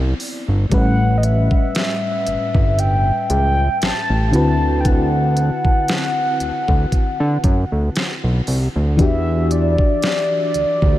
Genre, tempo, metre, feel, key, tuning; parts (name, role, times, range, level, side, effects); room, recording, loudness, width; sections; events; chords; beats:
contemporary R&B; 58 BPM; 4/4; swing 54% on 16ths; A4 = 439 Hz
FM electric piano with tremolo; accompaniment; 0.0-11.0 s; A2 to D5; -23 LUFS; left 2 dB
fat analog bass; bass; 0.0-11.0 s; G1 to D3; -17 LUFS; equal
smooth R&B drum kit; drums; 0.2-11.0 s; hi-hat, kick drum, snare drum; -20 LUFS; equal
mellow horn-like synth lead; melody; 0.7-11.0 s; D5 to A5; -21 LUFS; equal; chorus, diffuse ambient delay
moderate huge ambient reverb, RT60 8.7 s; dreamy mix soaked in reverb; -15 LUFS; side -14 dB against mid
0.0-11.0 A section
0.0 Cmaj9; 0.7 A9; 4.3 D13; 9.0 Em9
| 0.71 1.75 2.78 3.82 | 4.85 5.88 6.92 7.95 | 8.99 10.02